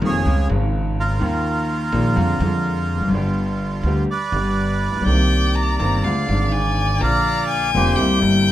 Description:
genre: tango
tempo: 125 BPM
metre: 4/4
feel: rubato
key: C minor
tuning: A4 = 436 Hz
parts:
  - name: bandoneon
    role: melody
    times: 0.0-8.2 s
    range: F4 to F5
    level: -24 LUFS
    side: right 4 dB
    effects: none
  - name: warm concert grand piano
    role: accompaniment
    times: 0.0-8.5 s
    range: F1 to G4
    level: -21 LUFS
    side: left 1 dB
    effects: none
  - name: upright bass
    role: bass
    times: 0.0-8.5 s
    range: E1 to F2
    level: -22 LUFS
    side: right 1 dB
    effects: none
  - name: warm violin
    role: second line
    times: 5.1-8.5 s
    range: F5 to Bb5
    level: -22 LUFS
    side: left 6 dB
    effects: none
room: moderate large studio reverb, RT60 0.9 s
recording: minimal, uncompressed stereo recording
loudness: -17 LUFS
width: side -13 dB against mid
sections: 0.0-8.5 A section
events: none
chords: 0.3 Db; 1.2 Ebsus2; 2.2 Ddim/F; 3.1 G; 5.1 Cm7; 6.0 Ddim; 7.0 Bb; 8.0 C7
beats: 0.26 0.73 | 1.21 1.69 2.17 2.64 | 3.12 3.60 4.08 4.57 | 5.06 5.55 6.04 6.52 | 7.01 7.49 7.97 8.45

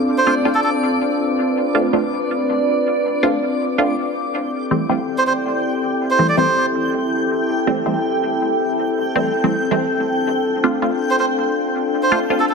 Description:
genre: drum and bass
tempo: 162 BPM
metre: 4/4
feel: straight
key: A minor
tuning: A4 = 439 Hz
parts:
  - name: warbly tape-like pad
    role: sustained chords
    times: 0.0-12.5 s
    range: C4 to B4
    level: -20 LUFS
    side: left 2 dB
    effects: chorus, built-in reverb, vintage 12-bit sampler grit
  - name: backwards swelling texture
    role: texture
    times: 0.0-12.5 s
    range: D5 to G6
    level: -24 LUFS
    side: right 2 dB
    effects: built-in reverb
  - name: melodica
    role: melody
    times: 0.2-0.7, 5.2-6.7, 11.1-12.5 s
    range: A4 to D5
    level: -20 LUFS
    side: right 3 dB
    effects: dub echo
  - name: filtered dub chord stab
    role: stabs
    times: 0.3-12.4 s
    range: E3 to F4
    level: -22 LUFS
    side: right 1 dB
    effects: phaser, dub echo
room: moderate plate reverb, RT60 2.7 s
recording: none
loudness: -16 LUFS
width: side -4 dB against mid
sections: 0.0-12.5 A section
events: none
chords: 0.0 Dm7; 4.0 Am7; 9.9 Dm7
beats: 0.27 0.64 | 1.01 1.38 1.75 2.12 | 2.49 2.86 3.23 3.60 | 3.97 4.34 4.71 5.08 | 5.45 5.82 6.19 6.56 | 6.93 7.30 7.67 8.04 | 8.42 8.79 9.16 9.53 | 9.90 10.27 10.64 11.01 | 11.38 11.75 12.12 12.49

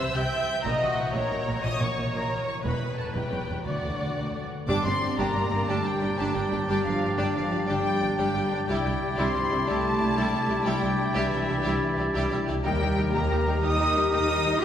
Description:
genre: cinematic, heroic adventure film score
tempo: 121 BPM (dotted quarters)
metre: 12/8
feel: straight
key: G minor from 4.7 s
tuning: A4 = 440 Hz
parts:
  - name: rich symphonic violin section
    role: melody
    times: 0.0-14.6 s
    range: E5 to G6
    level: -33 LUFS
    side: left 2 dB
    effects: none
  - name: warm symphonic violin section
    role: second line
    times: 0.0-14.6 s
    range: F#4 to G5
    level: -37 LUFS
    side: left 1 dB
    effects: none
  - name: warm symphonic viola section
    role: accompaniment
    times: 0.0-14.6 s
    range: G3 to E5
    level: -31 LUFS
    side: equal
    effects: none
  - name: concert harp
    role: arpeggios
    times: 0.0-14.6 s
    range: G2 to G5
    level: -35 LUFS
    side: left 4 dB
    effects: none
  - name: bright symphonic double bass section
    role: bass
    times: 0.0-14.6 s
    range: E1 to Eb2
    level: -32 LUFS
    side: right 1 dB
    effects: none
  - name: warm symphonic cello section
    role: bass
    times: 0.0-14.6 s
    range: D2 to G4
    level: -31 LUFS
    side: right 2 dB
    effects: none
  - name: timpani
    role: percussion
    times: 2.6-5.1 s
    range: E2 to G2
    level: -38 LUFS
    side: right 1 dB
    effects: none
  - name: mellow hollow silver concert flute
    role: second line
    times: 4.7-14.6 s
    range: E5 to Eb6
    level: -33 LUFS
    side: equal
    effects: none
  - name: warm clarinet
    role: second line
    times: 4.7-14.6 s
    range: D4 to G4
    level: -34 LUFS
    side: left 2 dB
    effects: none
  - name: warm oboe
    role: second line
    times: 4.7-14.6 s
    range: Bb4 to D5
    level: -34 LUFS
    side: right 1 dB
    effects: none
  - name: mellow French horn section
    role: sustained chords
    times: 4.7-14.6 s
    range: Bb3 to G4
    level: -32 LUFS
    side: left 3 dB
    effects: none
room: wet cathedral reverb, RT60 6.0 s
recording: recorded in a church or concert hall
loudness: -24 LUFS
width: side -9 dB against mid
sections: 0.0-4.7 A section; 4.7-14.6 B section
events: none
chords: 0.0 C; 0.7 F#7/A#; 2.6 Em; 3.7 D7; 4.7 Gm; 8.7 Cadd9; 12.6 Eb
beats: 0.15 | 0.65 1.15 1.64 2.14 | 2.64 3.15 3.66 4.17 | 4.68 5.18 5.68 6.18 | 6.68 7.18 7.68 8.18 | 8.68 9.17 9.67 10.16 | 10.66 11.15 11.64 12.14 | 12.64 13.13 13.63 14.13 | 14.62

